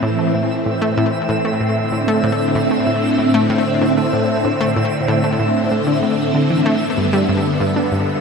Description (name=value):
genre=ambient, sequencer-driven space music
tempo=95 BPM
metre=4/4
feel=straight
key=A minor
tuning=A4 = 440 Hz
part: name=phased string machine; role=sustained chords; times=0.0-8.2 s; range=G2 to C4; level=-17 LUFS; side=equal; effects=ensemble chorus, phaser
part: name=analog pluck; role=riff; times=0.0-8.0 s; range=G2 to D4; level=-19 LUFS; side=left 1 dB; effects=chorus, ping-pong delay
part: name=twinkling granular texture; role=texture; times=0.0-8.2 s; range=E5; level=-25 LUFS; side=equal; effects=built-in reverb
room=wet huge ambient reverb, RT60 7.3 s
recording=dreamy mix soaked in reverb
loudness=-15 LUFS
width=side -5 dB against mid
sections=0.0-8.2 A section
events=none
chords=0.0 Am; 6.8 G